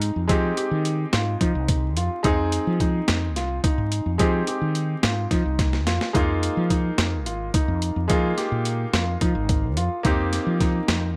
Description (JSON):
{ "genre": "progressive instrumental, band music in an uneven meter", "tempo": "215 BPM (eighths)", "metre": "7/8", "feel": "straight", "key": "F minor", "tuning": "A4 = 440 Hz", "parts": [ { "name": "bright grand piano", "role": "accompaniment", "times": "0.0-11.2 s", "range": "Ab3 to Ab4", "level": "-31 LUFS", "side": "equal", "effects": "none" }, { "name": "warm grand piano", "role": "arpeggios", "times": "0.0-11.1 s", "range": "Eb4 to Ab4", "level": "-31 LUFS", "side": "equal", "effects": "none" }, { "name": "mellow fretless electric bass", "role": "bass", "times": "0.0-11.2 s", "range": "Ab1 to F3", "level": "-27 LUFS", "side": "equal", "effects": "none" }, { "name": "boom bap sampler-style drum kit", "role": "drums", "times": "0.0-11.0 s", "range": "hi-hat, kick drum, snare drum", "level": "-26 LUFS", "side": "equal", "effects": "none" } ], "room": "little or no reverb", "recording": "vinyl crackle", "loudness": "-23 LUFS", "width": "mono", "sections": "0.0-11.2 A section", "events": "drum fill 5.6-6.1", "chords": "0.0 Fm7; 6.1 Fm11/Ab; 10.0 Eb69" }